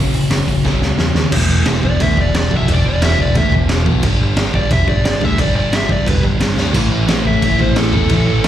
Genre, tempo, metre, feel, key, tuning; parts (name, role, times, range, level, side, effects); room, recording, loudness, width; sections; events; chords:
punk rock; 177 BPM; 4/4; straight; A4 = 440 Hz
biting overdriven guitar; riff; 0.0-1.8, 6.7-8.5 s; F#2 to A3; -23 LUFS; right 1 dB
distorted electric guitar; riff; 0.0-8.5 s; E2 to A3; -24 LUFS; right 11 dB; distortion, slapback echo
sludgy distorted guitar; riff; 0.0-8.5 s; E2 to A3; -21 LUFS; left 8 dB; overdrive
growling picked electric bass; bass; 0.0-8.5 s; E1 to E2; -18 LUFS; equal; overdrive
raw garage drum kit; drums; 0.1-8.5 s; crash cymbal, hi-hat, kick drum, snare drum, splash cymbal; -16 LUFS; equal
smooth overdriven lead guitar; melody; 1.9-8.5 s; A4 to E5; -20 LUFS; equal; slapback echo
studio reverb; live gig heard through the venue's PA, club reverb; -12 LUFS; side -11 dB against mid
0.0-1.3 A section; 1.3-8.5 B section
drum fill 0.6-1.3, 6.6; lead electric guitar solo 1.3-8.5
0.0 F#5; 1.3 E5; 4.0 G5; 6.7 A5